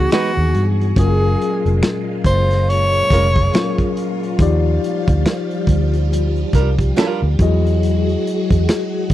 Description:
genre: R&B, neo-soul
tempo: 70 BPM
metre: 4/4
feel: swing 59% on 16ths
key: unclear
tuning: A4 = 443 Hz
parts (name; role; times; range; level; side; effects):
- breathy tenor saxophone; melody; 0.0-4.0 s; F#4 to C#5; -20 LUFS; equal; tape echo
- mellow tine electric piano; accompaniment; 0.0-9.1 s; E3 to D#5; -22 LUFS; left 4 dB; fast stereo tremolo
- phased string machine; sustained chords; 0.0-9.1 s; A#2 to G#4; -25 LUFS; right 1 dB; ensemble chorus, phaser
- vintage muted fingered electric bass; bass; 0.0-9.1 s; E#1 to G2; -16 LUFS; equal; none
- nylon-string guitar; second line; 0.1-7.2 s; G3 to B4; -20 LUFS; right 5 dB; none
- crunchy breakbeat drum kit; drums; 0.1-9.1 s; finger snaps, hi-hat, kick drum, snare drum; -18 LUFS; equal; none
room: studio ambience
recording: dry, close 1970s-style studio recording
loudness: -14 LUFS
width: side -13 dB against mid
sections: 0.0-9.1 A section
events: none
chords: 0.0 Emaj9; 1.0 F#maj9; 4.4 D#maj9; 7.4 Emaj9

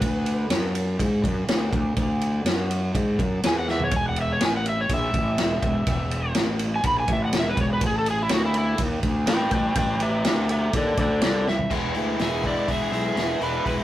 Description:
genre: blues rock power trio and southern rock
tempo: 123 BPM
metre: 4/4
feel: straight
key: E mixolydian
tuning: A4 = 440 Hz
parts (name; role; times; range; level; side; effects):
- overdriven slide guitar; melody; 0.0-0.5, 3.5-13.7 s; E4 to B5; -26 LUFS; equal; none
- fuzz fingered electric bass; bass; 0.0-13.8 s; E1 to G#2; -25 LUFS; equal; overdrive
- vintage drum kit; drums; 0.0-13.8 s; crash cymbal, hi-hat, kick drum, ride cymbal, snare drum, toms; -26 LUFS; equal; none
- biting overdriven guitar; riff; 11.7-13.8 s; E3 to E4; -26 LUFS; left 1 dB; none
- biting lead guitar; second line; 12.2-13.7 s; D4 to G#4; -32 LUFS; right 2 dB; overdrive
room: light reverb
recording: rough rehearsal-room recording, warm saturation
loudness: -21 LUFS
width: side -14 dB against mid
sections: 0.0-11.7 A section; 11.7-13.8 B section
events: electric slide guitar solo 0.0-11.7; drum fill 3.7, 11.5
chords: 0.0 Dadd9(#11); 3.9 Esus4; 7.8 Am11; 11.7 E

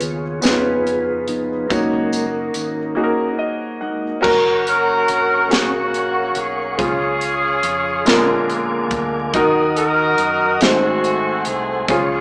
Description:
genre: slow gospel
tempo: 47 BPM (dotted quarters)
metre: 6/8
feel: straight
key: F# major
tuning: A4 = 440 Hz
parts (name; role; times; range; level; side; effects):
- warm concert grand piano; accompaniment; 0.0-12.2 s; G#2 to F#5; -19 LUFS; equal; none
- mellow tonewheel organ; sustained chords; 0.0-12.2 s; E#3 to D#6; -22 LUFS; equal; slow rotary speaker
- fingered electric bass; bass; 0.0-12.2 s; E#1 to F#2; -33 LUFS; equal; none
- crisp fusion drum kit; drums; 0.0-12.1 s; crash cymbal, hi-hat, kick drum, snare drum; -21 LUFS; equal; none
- tambourine; percussion; 0.0-3.0 s; none; -30 LUFS; right 1 dB; none
- warm horn section; melody; 4.7-12.2 s; A3 to A#4; -18 LUFS; equal; none
room: moderate studio reverb, RT60 0.6 s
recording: band playing live in one room, small speaker sound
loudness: -15 LUFS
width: side -31 dB against mid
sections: 0.0-4.3 A section; 4.3-12.2 B section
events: tonewheel organ solo 0.0-4.3; grand piano fill 3.0-4.3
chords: 0.0 C#7; 1.7 F#6; 4.3 F#; 6.8 C#; 8.1 A#7; 9.3 D#m; 10.6 G#7b9

